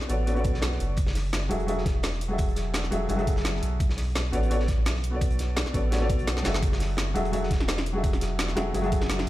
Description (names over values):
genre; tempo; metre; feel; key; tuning
liquid drum and bass; 170 BPM; 4/4; swing 53% on 16ths; F# minor; A4 = 440 Hz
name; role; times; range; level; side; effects
felt-muted upright piano; accompaniment; 0.0-9.3 s; F#3 to E5; -30 LUFS; left 1 dB; low-pass filter, digital delay
drum and bass drum kit; drums; 0.0-9.3 s; hi-hat, snare drum; -32 LUFS; equal; overdrive
warm sub bass; bass; 0.1-9.3 s; E1 to B1; -28 LUFS; equal; none
crunchy breakbeat drum kit; drums; 0.1-9.3 s; hi-hat, snare drum; -37 LUFS; equal; high-pass filter on hats, high-pass filter on snare, high-pass filter on room
electronic kick drum; drums; 0.4-9.0 s; none; -26 LUFS; equal; overdrive
room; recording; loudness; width
light reverb, small room ambience; played on a big sound system in a bare room, large studio reverb; -24 LUFS; side -15 dB against mid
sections
0.0-9.3 A section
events
drum fill 6.4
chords
0.0 Bm7; 1.0 F#m7; 3.8 Bm7; 6.6 F#m7